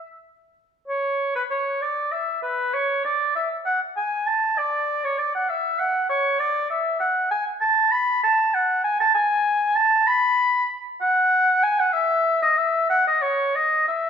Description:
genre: classical, baroque-style fantasia for unaccompanied oboe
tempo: 65 BPM (dotted quarters)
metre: 6/8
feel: rubato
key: E major from 8.2 s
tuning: A4 = 441 Hz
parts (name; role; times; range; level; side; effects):
- warm oboe; solo; 0.9-14.1 s; B4 to B5; -19 LUFS; equal; none
room: wet recital hall reverb, RT60 1.5 s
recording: minimal, uncompressed stereo recording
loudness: -19 LUFS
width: side -7 dB against mid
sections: 0.9-14.1 A section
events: none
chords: none

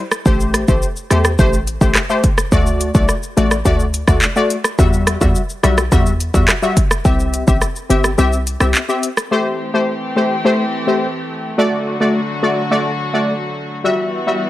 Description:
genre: dancehall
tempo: 106 BPM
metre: 4/4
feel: straight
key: A dorian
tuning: A4 = 435 Hz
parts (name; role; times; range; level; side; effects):
- synth brass stab; accompaniment; 0.0-14.5 s; G3 to E5; -17 LUFS; left 2 dB; chorus, sidechain pumping
- afro-pop drum kit; drums; 0.1-9.3 s; handclaps, hi-hat, kick drum, rim click, shaker; -16 LUFS; equal; none
- short 808-style bass; bass; 0.3-8.7 s; G1 to E2; -17 LUFS; equal; none
- warm studio string section; sustained chords; 9.3-14.5 s; D3 to G4; -22 LUFS; left 1 dB; sidechain pumping
room: digital ambience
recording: none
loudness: -13 LUFS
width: side -15 dB against mid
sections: 0.0-9.3 A section; 9.3-14.5 B section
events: kick muted 8.2-9.3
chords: 0.3 Am7; 2.5 D; 4.8 Emadd9; 7.1 C; 9.3 Am7; 11.6 D; 13.8 Emadd9

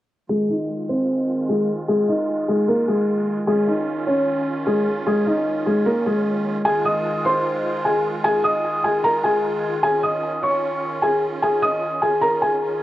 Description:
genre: hip hop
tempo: 151 BPM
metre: 4/4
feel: half-time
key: F minor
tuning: A4 = 440 Hz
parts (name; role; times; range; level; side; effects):
- felt-muted upright piano; melody; 0.3-12.8 s; Ab3 to Eb6; -19 LUFS; equal; low-pass filter
- musette accordion; sustained chords; 0.3-12.8 s; Eb3 to F4; -29 LUFS; right 2 dB; low-pass filter
room: light reverb, studio reverb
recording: worn, warbling old tape, cassette tape, warbly pitch drift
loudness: -18 LUFS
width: side -14 dB against mid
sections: 0.3-6.7 A section; 6.7-12.8 B section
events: filter sweep 0.3-6.7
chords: 0.3 Fm7; 3.5 Dbadd9; 6.7 Fm7; 9.8 Dbadd9

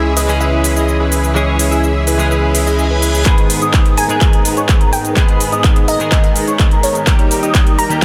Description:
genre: EDM, festival progressive house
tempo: 126 BPM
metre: 4/4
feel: straight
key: G# harmonic minor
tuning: A4 = 440 Hz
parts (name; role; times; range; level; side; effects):
- glassy wavetable pluck; melody; 0.0-8.0 s; C#5 to A#5; -25 LUFS; equal; chorus, digital delay
- direct-recorded clean electric guitar; accompaniment; 0.0-8.0 s; G#2 to G#4; -23 LUFS; equal; ensemble chorus, sidechain pumping
- lush unison pad; sustained chords; 0.0-8.0 s; D#2 to G#4; -26 LUFS; equal; chorus, sidechain pumping
- dense compressed supersaw; riff; 0.0-8.0 s; D#4 to E5; -22 LUFS; equal; sidechain pumping, low-pass filter, digital delay
- saturated sub bass; bass; 0.0-3.2 s; C#2; -18 LUFS; equal; sidechain pumping
- big-room dance drum kit; drums; 0.2-8.0 s; handclaps, hi-hat, shaker; -22 LUFS; equal; overdrive
- reverse cymbal; sound effects; 2.5-3.3 s; none; -27 LUFS; equal; none
- unison lead; arpeggios; 3.3-8.0 s; A#5 to D#6; -25 LUFS; equal; ensemble chorus, cassette tape, sidechain pumping, digital delay
- electronic kick drum; drums; 3.3-8.0 s; none; -14 LUFS; equal; overdrive
room: light reverb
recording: none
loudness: -13 LUFS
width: mono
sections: 0.0-3.3 A section; 3.3-8.0 B section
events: reverse cymbal 2.5-3.3; build-up 3.3-8.0; drum fill 3.3-8.0; filter sweep on analog synth lead 3.3-8.0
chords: 0.0 C#m; 3.3 G#m; 7.1 D#

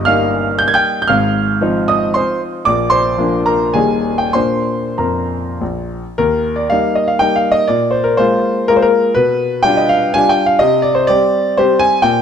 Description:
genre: classical, romantic triple-time dance for piano with dotted rhythms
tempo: 92-138 BPM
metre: 3/4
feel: rubato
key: Eb major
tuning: A4 = 440 Hz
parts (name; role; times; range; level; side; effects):
- clear grand piano; solo; 0.0-12.2 s; Eb1 to Ab6; -12 LUFS; equal; none
room: light reverb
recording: close, detailed microphones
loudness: -12 LUFS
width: side -8 dB against mid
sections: 0.0-6.2 A section; 6.2-12.2 B section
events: none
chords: 0.0 Eb/G; 1.1 Fm7/Ab; 2.7 Bb; 3.7 Eb; 4.3 Bb; 6.2 Eb; 7.7 Bb5; 9.1 G7/B; 10.6 C5

